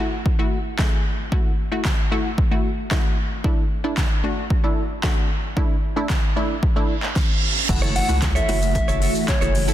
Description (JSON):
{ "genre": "dance-pop", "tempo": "113 BPM", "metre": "4/4", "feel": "straight", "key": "F# minor", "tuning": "A4 = 438 Hz", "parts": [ { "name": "punchy chord stab", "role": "accompaniment", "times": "0.0-9.7 s", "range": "A3 to A4", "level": "-27 LUFS", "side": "equal", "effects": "chorus, sidechain pumping" }, { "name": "deep house drum kit", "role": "drums", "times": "0.3-9.7 s", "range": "crash cymbal, handclaps, hi-hat, kick drum, shaker, snare drum", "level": "-21 LUFS", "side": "equal", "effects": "overdrive" }, { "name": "reverse cymbal and impact", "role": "sound effects", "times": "6.9-9.7 s", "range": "none", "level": "-27 LUFS", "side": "right 3 dB", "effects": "none" }, { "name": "ensemble organ-string", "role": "sustained chords", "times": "7.7-9.7 s", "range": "E3 to F#4", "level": "-27 LUFS", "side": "right 2 dB", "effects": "ensemble chorus, sidechain pumping" }, { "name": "direct-recorded clean electric guitar", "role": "riff", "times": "7.7-9.7 s", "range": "E4 to C#5", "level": "-30 LUFS", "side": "right 5 dB", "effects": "wide subtle chorus" }, { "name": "saturated sub bass", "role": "bass", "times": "7.7-9.7 s", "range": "F#1 to C#2", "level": "-22 LUFS", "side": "equal", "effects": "sidechain pumping" }, { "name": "tube shaker", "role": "percussion", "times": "7.7-9.7 s", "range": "none", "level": "-40 LUFS", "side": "left 14 dB", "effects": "none" }, { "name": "soft struck synth lead", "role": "melody", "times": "8.0-9.7 s", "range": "C#5 to F#5", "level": "-24 LUFS", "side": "left 2 dB", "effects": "chorus, tremolo" } ], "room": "light reverb, digital ambience", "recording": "dense, heavily limited modern master", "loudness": "-19 LUFS", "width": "side -12 dB against mid", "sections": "0.0-7.7 A section; 7.7-9.7 B section", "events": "reverse cymbal 6.9-7.7; impact 7.7-9.7", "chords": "0.0 F#m7; 3.4 E7sus4; 7.7 F#m7" }